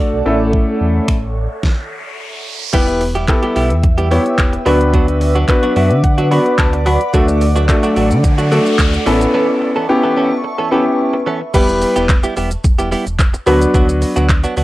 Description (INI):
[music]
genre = dance-pop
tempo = 109 BPM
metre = 4/4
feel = straight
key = unclear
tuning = A4 = 440 Hz
[part]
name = warm concert grand piano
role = accompaniment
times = 0.0-14.4 s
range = F#3 to B5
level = -15 LUFS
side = left 1 dB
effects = sidechain pumping, plate reverb
[part]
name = granular cloud pad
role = sustained chords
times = 0.0-11.5 s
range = A4 to E6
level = -23 LUFS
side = right 2 dB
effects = built-in reverb, sidechain pumping, plate reverb
[part]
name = sub bass with octave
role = bass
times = 0.1-14.6 s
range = E1 to D3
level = -17 LUFS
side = equal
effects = sidechain pumping
[part]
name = pop drum kit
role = drums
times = 0.5-14.6 s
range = crash cymbal, finger snaps, handclaps, hi-hat, kick drum, shaker, snare drum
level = -15 LUFS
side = equal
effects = cassette tape
[part]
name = riser and noise sweep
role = sound effects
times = 1.3-2.7, 7.6-10.4 s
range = none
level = -27 LUFS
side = equal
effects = none
[part]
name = direct-recorded clean electric guitar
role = riff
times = 2.7-14.6 s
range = E3 to A4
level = -19 LUFS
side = right 2 dB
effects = lush chorus
[sound]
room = moderate studio reverb, RT60 0.6 s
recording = home recording on cassette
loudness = -12 LUFS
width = side -17 dB against mid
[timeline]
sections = 0.0-2.7 A section; 2.7-11.5 B section; 11.5-14.6 C section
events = riser 1.3-2.7; stop 1.6-2.7; grand piano fill 5.5-7.1; noise sweep 7.6-11.5; break 9.3-11.5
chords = 0.3 A; 2.7 Em; 4.7 Bm/D; 7.1 D; 9.1 Aadd9; 11.5 Em; 13.5 Bm/D